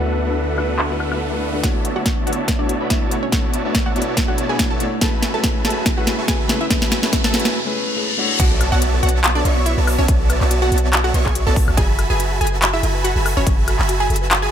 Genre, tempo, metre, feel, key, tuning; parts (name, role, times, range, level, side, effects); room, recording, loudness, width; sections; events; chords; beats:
future bass; 142 BPM; 4/4; swing 54% on 16ths, half-time; A4 = 440 Hz
clear concert grand piano; accompaniment; 0.0-8.4 s; A3 to C#5; -26 LUFS; left 3 dB; sidechain pumping, ping-pong delay
ethereal airy pad; sustained chords; 0.0-7.5 s; F#2 to F#4; -30 LUFS; equal; ensemble chorus, built-in reverb, sidechain pumping
supersaw chords; riff; 0.0-14.5 s; B3 to C#6; -24 LUFS; right 2 dB; sidechain pumping, low-pass filter
warm 808-style bass; bass; 0.0-1.6, 8.4-14.5 s; F#1 to D2; -19 LUFS; equal; tube saturation, sidechain pumping
riser, reverse cymbal and impact; sound effects; 0.0-10.1 s; -27 LUFS; left 1 dB
thumb-piano-like synth pluck; arpeggios; 0.1-1.6, 8.4-14.5 s; F#4 to D5; -31 LUFS; left 3 dB; chorus, sidechain pumping, ping-pong delay
trap drum kit; drums; 0.6-14.4 s; crash cymbal, handclaps, hi-hat, snare drum, woodblock; -20 LUFS; left 1 dB; low-pass filter on perc, low-pass filter on snare, low-pass filter on hats, low-pass filter on cymbals
wide unison pluck; melody; 1.6-14.5 s; C#4 to A5; -25 LUFS; right 1 dB; sidechain pumping, digital delay
electronic kick drum; drums; 1.6-13.6 s; -20 LUFS; equal; overdrive
airy dreamy lead; arpeggios; 8.4-14.5 s; A5 to C#6; -32 LUFS; right 1 dB
light reverb, digital ambience; -16 LUFS; side -9 dB against mid
0.0-1.6 A section; 1.6-8.4 B section; 8.4-14.5 C section
riser 0.0-1.6, 1.6-8.4; build-up 1.6-8.4; drum fill 1.6-7.6; filter sweep on supersaw synth 1.6-8.4; filter sweep on synth pluck 1.6-8.4; break 7.6-8.4; reverse cymbal 7.6-8.4; drop 8.4-14.5; impact 8.4-10.1
0.0 D6; 1.6 Bm11; 5.0 F#m11; 8.2 Dmaj9/A; 8.4 Bm11; 11.8 F#m11
0.37 0.79 1.21 | 1.64 2.06 2.48 2.90 | 3.33 3.75 4.17 4.59 | 5.01 5.44 5.86 6.28 | 6.71 7.13 7.55 7.97 | 8.40 8.82 9.24 9.66 | 10.09 10.51 10.93 11.35 | 11.78 12.20 12.62 13.04 | 13.47 13.89 14.31